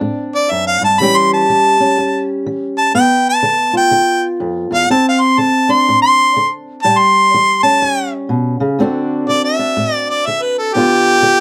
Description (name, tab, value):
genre	acoustic country blues, solo or duo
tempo	123 BPM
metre	4/4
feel	swing 61% on 8ths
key	unclear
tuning	A4 = 440 Hz
part	fingerpicked old ladder-braced acoustic guitar	accompaniment	0.0-11.4 s	D2 to G4	-19 LUFS	equal	none
part	clear harmonica	melody	0.3-11.4 s	G4 to C6	-14 LUFS	equal	none
room	light reverb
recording	none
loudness	-14 LUFS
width	mono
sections	0.0-8.8 A section; 8.8-11.4 A section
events	harmonica solo 0.0-8.8, 8.8-11.4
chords	0.0 D7; 1.0 A7; 2.9 G7; 4.9 D5; 6.8 A7; 8.8 D7; 10.7 G7